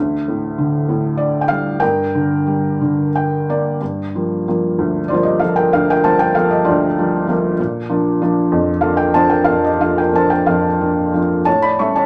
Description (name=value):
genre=classical, lyrical solo piano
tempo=59-65 BPM (dotted quarters)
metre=6/8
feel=rubato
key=G minor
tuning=A4 = 440 Hz
part: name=felt-muted upright piano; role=solo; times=0.0-12.1 s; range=D2 to C#6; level=-16 LUFS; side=equal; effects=none
room=wet studio reverb, RT60 0.6 s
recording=none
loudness=-16 LUFS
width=mono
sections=0.0-3.8 A section; 3.8-12.1 B section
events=felt piano fill 2.8-3.8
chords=0.0 Dsus4; 1.8 Gm; 3.8 Gm7; 7.6 Bb; 11.5 A7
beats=0.88 | 1.81 2.79 | 3.81 4.78 | 5.73 6.66 | 7.58 8.51 | 9.47 10.47 | 11.46